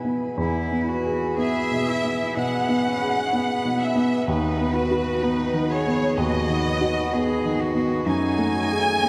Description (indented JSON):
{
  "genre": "neoclassical piano and strings",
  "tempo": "58-64 BPM",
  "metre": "4/4",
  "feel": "rubato",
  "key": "E major",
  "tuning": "A4 = 439 Hz",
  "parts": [
    { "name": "dark upright piano", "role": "accompaniment", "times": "0.0-9.1 s", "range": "D#2 to G#4", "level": "-26 LUFS", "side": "equal", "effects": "none" },
    { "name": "pedal harmonium", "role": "sustained chords", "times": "0.0-9.1 s", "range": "A3 to C#5", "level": "-35 LUFS", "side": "equal", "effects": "none" },
    { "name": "rich cello", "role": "second line", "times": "0.4-9.1 s", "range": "B3 to G#4", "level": "-31 LUFS", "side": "equal", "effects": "none" },
    { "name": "warm studio violin section", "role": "melody", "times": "1.4-9.1 s", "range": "B4 to G#5", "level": "-28 LUFS", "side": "equal", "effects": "none" }
  ],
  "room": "wet cathedral reverb, RT60 6.1 s",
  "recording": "in a vast, echoing space",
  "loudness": "-23 LUFS",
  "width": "mono",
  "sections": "0.4-9.1 A section",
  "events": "none",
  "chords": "0.4 E; 4.3 B/D#; 8.1 F#madd9"
}